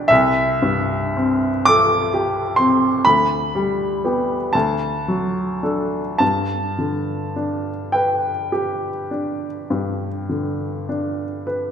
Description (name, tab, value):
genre	classical, romantic nocturne for solo piano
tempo	34-45 BPM (dotted quarters)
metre	12/8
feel	rubato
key	G major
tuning	A4 = 440 Hz
part	clear upright piano	solo	0.0-11.7 s	C2 to D6	-18 LUFS	equal	none
room	moderate concert hall reverb, RT60 1.9 s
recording	none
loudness	-18 LUFS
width	side -8 dB against mid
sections	0.0-11.7 A section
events	none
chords	0.1 Am7/C; 3.1 G/D; 4.5 D; 6.2 G